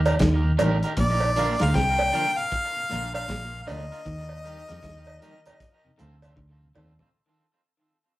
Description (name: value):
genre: roots reggae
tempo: 78 BPM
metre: 4/4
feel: swing 62% on 16ths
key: Bb major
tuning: A4 = 440 Hz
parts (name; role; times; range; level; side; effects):
- clean electric guitar; riff; 0.0-6.9 s; A2 to F3; -32 LUFS; equal; tape echo
- vintage muted fingered electric bass; bass; 0.0-7.0 s; A1 to F2; -25 LUFS; equal; none
- electric guitar at the edge of break-up; accompaniment; 0.1-7.1 s; C4 to Bb4; -33 LUFS; right 3 dB; tape echo
- mellow tonewheel organ; accompaniment; 0.1-6.9 s; Eb2 to C4; -36 LUFS; left 1 dB; slow rotary speaker
- cloth-damped thuddy drum kit; drums; 0.1-7.1 s; hi-hat, kick drum, snare drum, toms; -29 LUFS; equal; none
- cowbell; percussion; 0.1-7.0 s; none; -28 LUFS; right 2 dB; none
- clear harmonica; melody; 1.0-6.0 s; D5 to G5; -27 LUFS; left 1 dB; none
room: wet studio reverb, RT60 0.6 s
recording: rough rehearsal-room recording, vinyl crackle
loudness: -21 LUFS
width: side -17 dB against mid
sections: 0.0-7.1 A section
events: fade-out 0.0-7.1; drum fill 6.4-7.1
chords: 0.0 Eb; 1.0 Bb; 4.1 Eb; 5.6 F